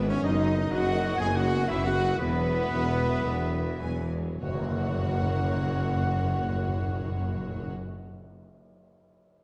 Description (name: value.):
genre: cinematic, heroic adventure film score.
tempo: 98-125 BPM (dotted quarters).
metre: 12/8.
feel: straight.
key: F# mixolydian.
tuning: A4 = 441 Hz.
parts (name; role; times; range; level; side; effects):
warm symphonic violin section; melody; 0.0-7.7 s; B4 to G#5; -42 LUFS; equal; none.
bright symphonic violin section; second line; 0.0-7.7 s; F#4 to G#5; -44 LUFS; equal; none.
silver concert flute; second line; 0.0-7.7 s; B4 to G#5; -41 LUFS; equal; none.
rich studio viola section; accompaniment; 0.0-7.8 s; D#3 to F#4; -40 LUFS; equal; none.
mellow French horn section; sustained chords; 0.0-7.7 s; F#3 to G#4; -35 LUFS; equal; none.
clear trumpet section; stabs; 0.0-7.7 s; B3 to F#5; -39 LUFS; equal; none.
clear symphonic double bass section; bass; 0.0-7.7 s; E1 to G#1; -34 LUFS; equal; none.
rich symphonic cello section; bass; 0.0-7.7 s; E2 to G#2; -35 LUFS; equal; none.
warm tuba; bass; 0.0-7.7 s; E1 to G#1; -38 LUFS; equal; none.
clear oboe; second line; 0.1-7.7 s; B4 to G#5; -41 LUFS; equal; none.
tam-tam; percussion; 4.4-6.0 s; none; -43 LUFS; equal; none.
timpani; percussion; 4.4-7.7 s; F#2; -37 LUFS; equal; none.
room: wet scoring stage reverb, RT60 1.5 s.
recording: dark, warm production.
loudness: -28 LUFS.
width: mono.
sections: 0.0-4.4 A section; 4.4-9.3 B section.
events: slowing down 0.9-4.4; band accent 4.4-4.8.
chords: 0.2 B/F#; 2.2 Eadd9; 4.4 F#.